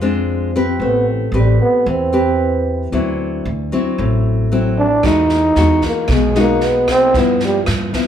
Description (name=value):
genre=bossa nova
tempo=113 BPM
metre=4/4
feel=straight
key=unclear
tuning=A4 = 440 Hz
part: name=nylon-string guitar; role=accompaniment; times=0.0-8.1 s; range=G2 to B4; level=-18 LUFS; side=left 2 dB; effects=none
part: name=upright bass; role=bass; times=0.0-7.9 s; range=A1 to G2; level=-20 LUFS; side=right 1 dB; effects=none
part: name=growling trombone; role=melody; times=0.8-7.6 s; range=E3 to D#4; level=-15 LUFS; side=right 1 dB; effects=none
part: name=swinging big-band drum kit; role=drums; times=5.0-8.0 s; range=kick drum, rim click, snare drum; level=-22 LUFS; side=right 1 dB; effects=none
room=moderate large studio reverb, RT60 0.8 s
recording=band playing live in one room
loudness=-13 LUFS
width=side -9 dB against mid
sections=0.0-8.1 A section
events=trombone solo 0.0-8.1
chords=0.0 Bb9 (rootless); 0.8 Am9; 2.9 D9; 5.0 Emaj9; 7.2 G6